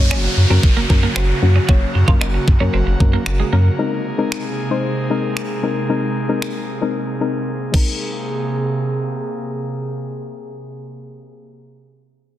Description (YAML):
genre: dance-pop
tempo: 114 BPM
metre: 4/4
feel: straight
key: Ab major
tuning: A4 = 440 Hz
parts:
  - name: soft round pluck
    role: accompaniment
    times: 0.0-11.3 s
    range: Gb3 to Db5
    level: -22 LUFS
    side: left 4 dB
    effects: chorus, sidechain pumping, low-pass filter
  - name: airy breathy pad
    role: sustained chords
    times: 0.0-11.3 s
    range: C3 to Ab4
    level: -24 LUFS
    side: right 2 dB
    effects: chorus, sidechain pumping, low-pass filter
  - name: twelve-string electric guitar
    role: riff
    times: 0.0-3.6 s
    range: Ab3 to Gb4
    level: -26 LUFS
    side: right 7 dB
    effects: lush chorus, low-pass filter
  - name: warm sub bass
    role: bass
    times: 0.0-3.7 s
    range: Gb1 to Gb2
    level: -16 LUFS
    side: equal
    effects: sidechain pumping
  - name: downlifter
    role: sound effects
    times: 0.0-3.8 s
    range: none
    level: -25 LUFS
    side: equal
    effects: none
  - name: pop drum kit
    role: drums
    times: 0.1-7.9 s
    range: crash cymbal, finger snaps, kick drum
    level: -17 LUFS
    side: equal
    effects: soft clipping on snare
room: moderate lush hall reverb, RT60 2.1 s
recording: dense, heavily limited modern master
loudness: -16 LUFS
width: side -12 dB against mid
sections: 0.0-8.0 A section; 8.0-12.2 B section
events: filter sweep 0.0-8.0; silent gap 7.5-8.0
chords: 0.0 Gb; 3.8 Abadd9